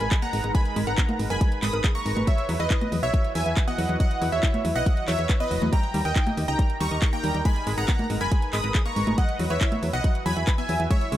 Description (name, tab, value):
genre	uplifting trance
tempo	139 BPM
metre	4/4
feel	straight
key	unclear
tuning	A4 = 440 Hz
part	supersaw stab	melody	0.0-11.2 s	B4 to D#6	-29 LUFS	right 1 dB	sidechain pumping, tape echo
part	plucky unison lead	second line	0.0-11.2 s	D#5 to D#6	-34 LUFS	equal	analog chorus, sidechain pumping, digital delay
part	lush unison pad	sustained chords	0.0-11.2 s	C#3 to B4	-34 LUFS	equal	chorus, sidechain pumping
part	analog pluck	arpeggios	0.0-11.2 s	F#3 to E5	-33 LUFS	left 1 dB	chorus, sidechain pumping, digital delay
part	solid FM bass	bass	0.0-11.2 s	E1 to E2	-27 LUFS	equal	sidechain pumping
part	house drum kit	drums	0.0-11.2 s	congas, handclaps, hi-hat	-31 LUFS	right 1 dB	none
part	impact	sound effects	0.0-0.5 s	none	barely audible	none	none
part	electronic kick drum	drums	0.1-11.0 s	none	-23 LUFS	equal	none
room	digital ambience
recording	none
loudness	-21 LUFS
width	side -13 dB against mid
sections	0.0-11.2 A section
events	impact 0.0-0.5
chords	0.0 G#madd9; 2.3 Esus2; 5.7 D#; 7.5 G#madd9; 9.2 Esus2